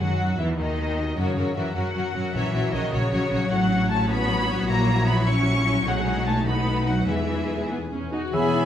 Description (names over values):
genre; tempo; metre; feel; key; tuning
classical, dramatic, fast romantic movement for symphony orchestra; 102 BPM (dotted quarters); 6/8; straight; E major from 3.5 s; A4 = 440 Hz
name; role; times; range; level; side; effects
rich symphonic violin section; melody; 0.0-8.7 s; C#5 to C#6; -28 LUFS; left 2 dB; none
rich symphonic violin section; second line; 0.0-8.7 s; D#4 to G#5; -32 LUFS; left 2 dB; none
rich symphonic viola section; accompaniment; 0.0-8.7 s; D#3 to G#4; -30 LUFS; equal; none
concert harp; arpeggios; 0.0-8.7 s; F#2 to A4; -28 LUFS; left 4 dB; none
rich symphonic cello section; bass; 0.0-8.7 s; E2 to C#4; -29 LUFS; right 2 dB; none
rich symphonic double bass section; bass; 0.0-8.7 s; E1 to F#2; -27 LUFS; right 1 dB; none
clear clarinet; second line; 8.3-8.7 s; B3; -31 LUFS; left 2 dB; none
silver concert flute; second line; 8.3-8.7 s; B5; -29 LUFS; left 1 dB; none
warm oboe; second line; 8.3-8.7 s; E5; -29 LUFS; right 2 dB; none
warm bassoon; accompaniment; 8.3-8.7 s; C#4; -27 LUFS; right 2 dB; none
mellow French horn section; sustained chords; 8.3-8.7 s; B3 to E4; -27 LUFS; left 3 dB; none
room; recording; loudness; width
wet recital hall reverb, RT60 1.6 s; minimal, uncompressed stereo recording, vinyl crackle; -21 LUFS; side -10 dB against mid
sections
0.0-8.3 A section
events
none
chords
0.0 B; 1.2 F#; 2.3 F#/A#; 3.5 F#m/A; 4.7 F#7/A#; 5.9 B13; 6.5 B7; 7.1 E